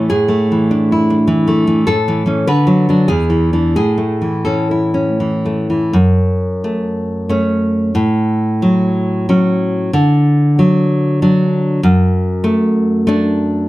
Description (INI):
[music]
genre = romantic piece for solo classical guitar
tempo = 82-102 BPM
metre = 3/4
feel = rubato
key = A major, F# minor from 5.9 s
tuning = A4 = 439 Hz
[part]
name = nylon-string guitar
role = solo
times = 0.0-13.7 s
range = E2 to B4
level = -12 LUFS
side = equal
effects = none
[sound]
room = wet studio reverb, RT60 0.5 s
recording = dark, warm production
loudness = -12 LUFS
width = side -17 dB against mid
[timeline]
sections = 0.0-5.9 A section; 5.9-13.7 B section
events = none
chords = 0.1 E7/A; 1.9 A; 2.5 Bm/D; 3.1 E7; 3.8 A; 5.9 F#m; 8.0 F#m/A; 9.9 D; 11.8 D/F#